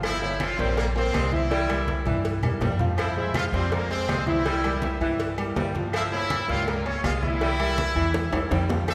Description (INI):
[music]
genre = latin, salsa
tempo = 163 BPM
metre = 4/4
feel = straight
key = unclear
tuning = A4 = 441 Hz
[part]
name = bright trumpet section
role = melody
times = 0.0-8.9 s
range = Bb3 to E6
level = -31 LUFS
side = equal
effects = none
[part]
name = edgy saxophone section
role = second line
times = 0.0-8.9 s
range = E3 to Ab3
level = -36 LUFS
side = equal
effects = none
[part]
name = warm grand piano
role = accompaniment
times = 0.0-8.8 s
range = E3 to F5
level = -32 LUFS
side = equal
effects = none
[part]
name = upright bass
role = bass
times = 0.0-8.9 s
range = G1 to G2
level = -31 LUFS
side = equal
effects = none
[part]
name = agogo bells and timbales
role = percussion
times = 0.0-8.9 s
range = none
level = -36 LUFS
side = equal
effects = none
[part]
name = claves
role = percussion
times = 0.0-8.9 s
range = none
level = -44 LUFS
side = equal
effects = none
[part]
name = congas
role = percussion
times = 0.0-8.9 s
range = none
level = -35 LUFS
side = equal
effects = none
[part]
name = cowbell and bongos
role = percussion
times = 0.0-8.9 s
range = none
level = -38 LUFS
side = equal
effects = none
[sound]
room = wet church reverb, RT60 3.1 s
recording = recorded in a church or concert hall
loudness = -25 LUFS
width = mono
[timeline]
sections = 0.0-8.9 A section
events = drum fill 1.9-3.0, 8.1-8.9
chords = 0.0 Gm7b5; 1.5 C7; 3.0 Fmadd9; 4.5 C7; 5.9 Gm7b5; 7.4 C7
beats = | 0.04 0.40 0.77 1.14 | 1.51 1.88 2.25 2.62 | 2.98 3.35 3.72 4.09 | 4.46 4.83 5.20 5.56 | 5.93 6.30 6.67 7.04 | 7.41 7.77 8.14 8.51 | 8.88